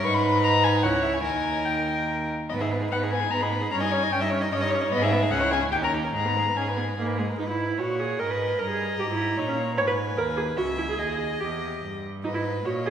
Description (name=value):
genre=quick classical-period movement for string quartet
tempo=140-154 BPM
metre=3/4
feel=rubato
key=G# minor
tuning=A4 = 440 Hz
part: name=dark violin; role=melody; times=0.0-12.9 s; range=C#5 to C#6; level=-28 LUFS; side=left 5 dB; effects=none
part: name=rich violin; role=second line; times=0.0-12.9 s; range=G4 to E5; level=-30 LUFS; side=equal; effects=none
part: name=warm viola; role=accompaniment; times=0.0-12.9 s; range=G#3 to C#5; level=-28 LUFS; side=right 2 dB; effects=none
part: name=rich cello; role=bass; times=0.0-12.9 s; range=C#2 to A#2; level=-29 LUFS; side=right 2 dB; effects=none
room=wet scoring stage reverb, RT60 1.7 s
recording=heard from further back in the room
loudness=-23 LUFS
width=side -8 dB against mid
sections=0.0-7.4 A section; 7.4-12.9 A section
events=none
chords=0.0 G#m; 0.8 C#m; 1.2 D#; 2.5 G#m; 3.7 D#7/G; 4.9 G#m; 5.3 C#m; 5.7 D#7; 6.1 G#m; 8.6 D#7/G; 9.8 G#m; 10.6 C#m; 11.0 D#; 12.2 G#m